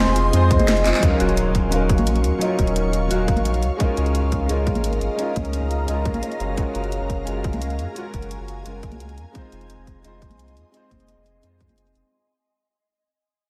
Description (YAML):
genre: liquid drum and bass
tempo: 173 BPM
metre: 4/4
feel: straight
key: unclear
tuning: A4 = 440 Hz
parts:
  - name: dark concert grand piano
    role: accompaniment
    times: 0.0-12.1 s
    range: Gb3 to F5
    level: -27 LUFS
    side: equal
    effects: analog chorus, tape echo
  - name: ethereal airy pad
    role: sustained chords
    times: 0.0-12.1 s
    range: Eb5 to Db6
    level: -31 LUFS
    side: equal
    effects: ensemble chorus, built-in reverb, phaser, sidechain pumping
  - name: Celtic harp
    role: arpeggios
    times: 0.0-9.0 s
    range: C4 to Db5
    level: -32 LUFS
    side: equal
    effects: diffuse ambient delay
  - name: warm sub bass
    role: bass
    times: 0.0-12.0 s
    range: Eb1 to Gb2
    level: -25 LUFS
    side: equal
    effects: none
  - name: drum and bass drum kit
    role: drums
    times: 0.1-12.0 s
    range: handclaps, hi-hat, rim click, snare drum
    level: -30 LUFS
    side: equal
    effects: overdrive, small room reverb
  - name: electronic kick drum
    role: drums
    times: 0.5-11.7 s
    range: none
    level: -24 LUFS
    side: equal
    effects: overdrive, small room reverb
  - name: congas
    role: percussion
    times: 0.6-11.8 s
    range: none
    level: -32 LUFS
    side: equal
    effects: none
  - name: sub drop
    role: sound effects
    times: 1.0-2.4 s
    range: none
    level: -30 LUFS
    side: equal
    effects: none
room: moderate lush hall reverb, RT60 2.0 s, small room reverb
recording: dreamy mix soaked in reverb, lossy compression artefacts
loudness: -21 LUFS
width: mono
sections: 0.0-1.0 A section; 1.0-12.1 B section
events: drop 0.0-1.0; drum fill 0.9; band accent 0.9; fade-out 1.0-12.1; impact 1.0-2.4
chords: 0.0 Fm7; 1.0 Ebm9; 3.6 Db69; 6.4 Gbmaj9; 9.2 Fm7